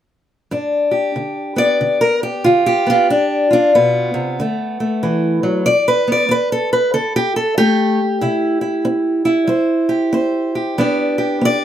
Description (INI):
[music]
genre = acoustic country blues, solo or duo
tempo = 94 BPM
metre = 4/4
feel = swing 62% on 8ths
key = G mixolydian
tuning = A4 = 440 Hz
[part]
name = fingerpicked steel-string acoustic guitar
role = solo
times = 0.5-11.6 s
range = G2 to D5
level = -14 LUFS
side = equal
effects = none
[sound]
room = light reverb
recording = none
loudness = -14 LUFS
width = side -10 dB against mid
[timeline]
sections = 0.5-5.7 A section; 5.7-11.6 B section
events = steel-string acoustic guitar solo 5.7-11.6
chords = 0.5 G7; 4.4 D; 5.7 G; 8.2 C; 10.8 G